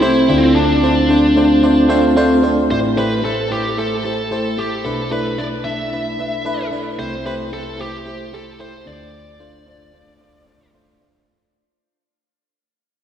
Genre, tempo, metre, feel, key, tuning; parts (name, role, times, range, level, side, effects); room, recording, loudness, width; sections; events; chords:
pop; 112 BPM; 4/4; straight; A minor; A4 = 441 Hz
bluesy overdriven lead guitar; melody; 0.0-10.7 s; C4 to E5; -19 LUFS; equal; distortion, shimmer reverb, diffuse ambient delay
FM electric piano; accompaniment; 0.0-11.3 s; A1 to C5; -17 LUFS; equal; chorus, shimmer reverb
wet lush hall reverb, RT60 2.6 s; dreamy mix soaked in reverb, small room ambience; -14 LUFS; side -9 dB against mid
0.0-2.7 A section; 2.7-11.3 B section
fade-out 2.7-11.3
0.3 Dm7; 2.7 Am7; 4.8 E7sus4/B; 7.0 Am7/C; 8.9 Dm7